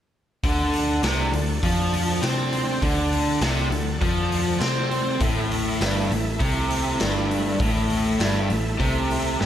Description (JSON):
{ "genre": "blues rock power trio and southern rock", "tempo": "100 BPM", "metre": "4/4", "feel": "straight", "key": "D major", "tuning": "A4 = 440 Hz", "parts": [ { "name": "overdriven tonewheel organ", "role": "sustained chords", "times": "0.4-9.5 s", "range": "A3 to F#5", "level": "-32 LUFS", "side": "right 2 dB", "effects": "slow rotary speaker, chorus vibrato" }, { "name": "raw garage guitar", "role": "riff", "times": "0.4-9.5 s", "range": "G2 to C4", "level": "-23 LUFS", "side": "equal", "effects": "overdrive" }, { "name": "vintage muted picked electric bass", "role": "bass", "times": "0.4-9.5 s", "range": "G1 to C3", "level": "-27 LUFS", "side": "equal", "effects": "none" }, { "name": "raw garage drum kit", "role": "drums", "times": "0.4-9.5 s", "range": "hi-hat, kick drum, snare drum", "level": "-26 LUFS", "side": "equal", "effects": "none" } ], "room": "moderate lush hall reverb, RT60 2.4 s", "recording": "big arena sound", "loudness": "-20 LUFS", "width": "side -10 dB against mid", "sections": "0.4-9.5 A section", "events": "none", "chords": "0.4 D; 5.2 A5", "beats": "| 0.44 1.04 1.63 2.23 | 2.82 3.42 4.01 4.61 | 5.21 5.80 6.40 7.00 | 7.60 8.20 8.79 9.39" }